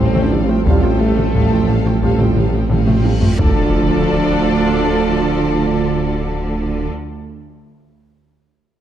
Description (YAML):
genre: cinematic, hybrid orchestral and electronic film score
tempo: 88 BPM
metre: 4/4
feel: straight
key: D minor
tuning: A4 = 444 Hz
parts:
  - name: rich symphonic violin section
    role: melody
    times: 0.0-6.9 s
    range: A4 to D5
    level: -31 LUFS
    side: left 4 dB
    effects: none
  - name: warm symphonic violin section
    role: second line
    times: 0.0-6.9 s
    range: A4 to A5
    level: -27 LUFS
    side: left 5 dB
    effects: none
  - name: rich studio viola section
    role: accompaniment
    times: 0.0-6.9 s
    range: F3 to A4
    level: -24 LUFS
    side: right 3 dB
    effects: none
  - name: hollow soft pad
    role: sustained chords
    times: 0.0-6.9 s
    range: F3 to A4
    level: -24 LUFS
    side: left 1 dB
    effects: chorus
  - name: mellow French horn section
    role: sustained chords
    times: 0.0-6.9 s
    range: A3 to D4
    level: -25 LUFS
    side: left 2 dB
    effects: none
  - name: round analog bass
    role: riff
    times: 0.0-3.3 s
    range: A2 to A3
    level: -21 LUFS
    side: left 2 dB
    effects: none
  - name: clear symphonic double bass section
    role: bass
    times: 0.0-6.9 s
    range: A1 to D2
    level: -22 LUFS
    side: right 4 dB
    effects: none
  - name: mellow tuba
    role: bass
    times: 0.0-6.9 s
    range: A1 to D2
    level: -22 LUFS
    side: right 3 dB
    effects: none
  - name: punchy sub bass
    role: bass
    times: 0.0-6.9 s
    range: D1 to A1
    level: -24 LUFS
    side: equal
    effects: none
  - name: rich symphonic cello section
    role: bass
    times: 0.0-6.9 s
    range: A2 to D3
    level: -24 LUFS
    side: right 4 dB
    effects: none
  - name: taiko ensemble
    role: drums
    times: 0.2-4.7 s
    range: none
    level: -20 LUFS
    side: equal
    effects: none
  - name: mellow trombone section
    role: sustained chords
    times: 0.7-6.9 s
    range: F3 to F4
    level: -27 LUFS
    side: right 3 dB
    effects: none
  - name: reverse cymbal and impact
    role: sound effects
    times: 3.0-7.6 s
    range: none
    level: -26 LUFS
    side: left 1 dB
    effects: none
room: moderate scoring stage reverb, RT60 1.7 s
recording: dark, warm production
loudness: -13 LUFS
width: side -10 dB against mid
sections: 0.0-3.4 A section; 3.4-6.1 B section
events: drum fill 2.7-3.4; reverse cymbal 3.0-3.4; impact 3.4-6.1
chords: 0.0 Fadd9/A; 3.4 Dm